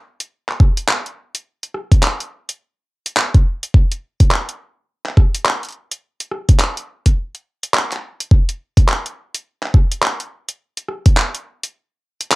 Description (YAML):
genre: glitch hop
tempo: 105 BPM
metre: 4/4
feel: swing 61% on 16ths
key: none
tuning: none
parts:
  - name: pop drum kit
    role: drums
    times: 0.2-12.4 s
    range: handclaps, hi-hat, rim click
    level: -19 LUFS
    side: equal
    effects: overdrive, cassette tape
  - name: electronic kick drum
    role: drums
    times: 0.6-11.1 s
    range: none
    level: -11 LUFS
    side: equal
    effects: overdrive, cassette tape
room: little or no reverb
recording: home recording on cassette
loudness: -15 LUFS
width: side -22 dB against mid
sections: 0.0-12.4 A section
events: kick drops out 7.7-8.3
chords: none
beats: 0.31 0.88 | 1.46 2.03 2.60 3.17 | 3.74 4.31 4.88 5.46 | 6.03 6.60 7.17 7.74 | 8.31 8.88 9.46 10.03 | 10.60 11.17 11.74 12.31